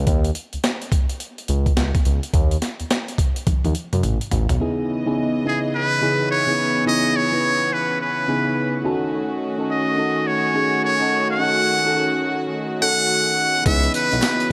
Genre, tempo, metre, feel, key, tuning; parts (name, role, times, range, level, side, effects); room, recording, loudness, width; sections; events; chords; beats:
R&B, new jack swing; 106 BPM; 4/4; swing 63% on 16ths; C# minor; A4 = 440 Hz
smooth synth bass; bass; 0.0-4.6, 13.7-14.2 s; A1 to F#2; -23 LUFS; equal
breakbeat sampler-style drum kit; drums; 0.1-4.6, 13.7-14.5 s; hi-hat, kick drum, snare drum, tambourine, toms; -23 LUFS; equal
mellow FM electric piano; accompaniment; 4.6-14.5 s; C#3 to B4; -26 LUFS; equal; chorus, phaser
warm studio string section; sustained chords; 4.6-14.5 s; C#3 to D#5; -29 LUFS; equal
trumpet with metal mute; melody; 5.5-14.5 s; G#4 to F#5; -22 LUFS; equal
group handclap; percussion; 14.2-14.4 s; -35 LUFS; equal
light reverb, digital ambience; -20 LUFS; mono
0.0-4.6 A section; 4.6-14.5 B section
drum fill 3.5-4.6
0.0 D#7(b5, no3); 4.6 C#m9; 8.8 D#m7b5; 13.7 C#m9
| 0.07 0.64 1.20 1.77 | 2.34 2.90 3.47 4.03 | 4.60 5.17 5.73 6.30 | 6.86 7.43 8.00 8.56 | 9.13 9.69 10.26 10.83 | 11.39 11.96 12.52 13.09 | 13.66 14.22